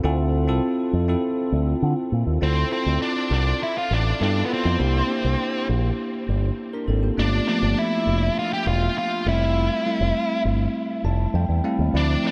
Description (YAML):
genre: pop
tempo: 101 BPM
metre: 4/4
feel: straight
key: D minor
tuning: A4 = 440 Hz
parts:
  - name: bell-like tine electric piano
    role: accompaniment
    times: 0.0-12.3 s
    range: F3 to A5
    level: -27 LUFS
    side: equal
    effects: subtle chorus
  - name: fingered electric bass with an envelope filter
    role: bass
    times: 0.0-12.1 s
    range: E1 to D3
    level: -24 LUFS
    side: equal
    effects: none
  - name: octave-fuzz lead guitar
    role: melody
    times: 2.4-12.3 s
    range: B3 to G4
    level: -28 LUFS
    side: equal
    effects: distortion, analog delay
room: moderate huge ambient reverb, RT60 8.1 s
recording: dreamy mix soaked in reverb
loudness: -22 LUFS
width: mono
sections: 0.0-2.4 A section; 2.4-12.3 B section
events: tine electric piano fill 10.8-11.9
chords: 0.0 Dm7; 4.2 G13; 4.8 C7; 7.2 G7; 9.3 Fmaj9